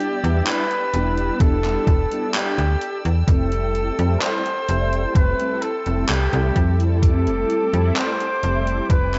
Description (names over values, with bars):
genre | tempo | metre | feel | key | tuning
vaporwave | 64 BPM | 4/4 | straight | F lydian | A4 = 444 Hz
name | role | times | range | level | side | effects
warm flugelhorn | melody | 0.0-9.2 s | G4 to C5 | -26 LUFS | equal | tape echo
mellow synth brass | accompaniment | 0.0-9.2 s | G3 to E4 | -29 LUFS | equal | phaser, ensemble chorus, tape echo
clear studio string section | sustained chords | 0.0-9.2 s | A4 to E6 | -37 LUFS | equal | none
gated 80s digital drum machine | drums | 0.0-9.2 s | handclaps, hi-hat | -29 LUFS | equal | gated reverb, overdrive
slap-like FM bass | bass | 0.2-9.2 s | E1 to F2 | -23 LUFS | equal | tube saturation
electronic kick drum | drums | 1.4-9.1 s | none | -20 LUFS | equal | none
room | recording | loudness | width
light reverb | cassette tape, nothing above 7.8 kHz | -20 LUFS | mono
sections
0.0-9.2 A section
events
none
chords
0.0 Em7; 3.3 Fmaj9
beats
0.47 1.40 2.34 | 3.28 4.22 5.15 6.09 | 7.03 7.97 8.90